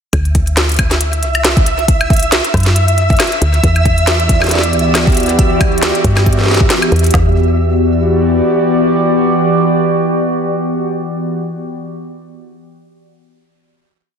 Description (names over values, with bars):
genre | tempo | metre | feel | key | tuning
IDM | 137 BPM | 4/4 | swing 56% on 16ths | E minor | A4 = 443 Hz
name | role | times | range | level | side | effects
woody FM bass | bass | 0.1-8.4 s | C2 to G2 | -15 LUFS | equal | none
organic electronic drum kit | drums | 0.1-7.3 s | kick drum, snare drum | -14 LUFS | equal | studio ambience
organic electronic drum kit | drums | 0.1-7.1 s | hi-hat, snare drum, woodblock | -16 LUFS | equal | studio ambience, digital delay
flickering grainy texture | texture | 0.5-7.1 s | E5 | -20 LUFS | right 2 dB | built-in reverb
warbly tape-like pad | sustained chords | 4.2-11.4 s | E3 to D5 | -14 LUFS | equal | chorus, built-in reverb, phaser
room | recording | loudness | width
moderate digital room reverb, RT60 1.1 s | dense, heavily limited modern master | -10 LUFS | side -7 dB against mid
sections
0.1-7.1 groove; 7.1-10.6 final chord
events
none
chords
0.1 D7; 3.6 Em9